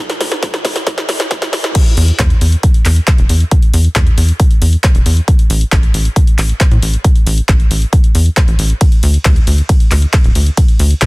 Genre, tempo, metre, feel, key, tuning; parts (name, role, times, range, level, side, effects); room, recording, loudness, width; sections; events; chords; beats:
uplifting trance; 136 BPM; 4/4; straight; A4 = 440 Hz
punchy analog drum machine; drums; 0.1-11.1 s; crash cymbal, handclaps, hi-hat, ride cymbal, snare drum; -18 LUFS; equal; overdrive
tight sequencer bass; bass; 0.2-11.1 s; D1 to A2; -12 LUFS; equal; sidechain pumping
electronic kick drum; drums; 0.4-11.1 s; -10 LUFS; equal
little or no reverb; dense, heavily limited modern master, high-pass filter; -9 LUFS; side -23 dB against mid
0.0-1.8 A section; 1.8-11.1 B section
build-up 0.0-1.8; drum fill 0.0-1.8; drop 1.8-11.1
0.43 0.87 1.31 | 1.75 2.19 2.63 3.07 | 3.52 3.96 4.40 4.84 | 5.28 5.72 6.16 6.60 | 7.04 7.49 7.93 8.37 | 8.81 9.25 9.69 10.13 | 10.57 11.02